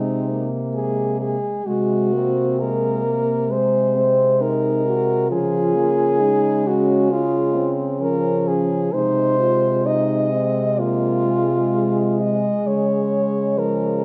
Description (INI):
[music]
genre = classical, lyrical piece for horn quartet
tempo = 65 BPM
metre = 4/4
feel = rubato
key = unclear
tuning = A4 = 438 Hz
[part]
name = clear French horn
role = melody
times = 0.0-14.0 s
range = Eb4 to Eb5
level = -22 LUFS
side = equal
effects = none
[part]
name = mellow French horn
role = second line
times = 0.0-14.0 s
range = F3 to Gb4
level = -28 LUFS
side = equal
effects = none
[part]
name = mellow French horn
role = accompaniment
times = 0.0-14.0 s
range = F3 to Bb3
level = -28 LUFS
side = equal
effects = none
[part]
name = mellow French horn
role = bass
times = 0.0-14.0 s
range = C3 to Db3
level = -27 LUFS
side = equal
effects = none
[sound]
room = moderate recital hall reverb, RT60 1.7 s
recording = none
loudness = -20 LUFS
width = mono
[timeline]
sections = 0.0-14.0 A section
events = none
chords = 0.0 Ab/C; 5.3 Db; 8.9 Ab/C; 12.7 Db5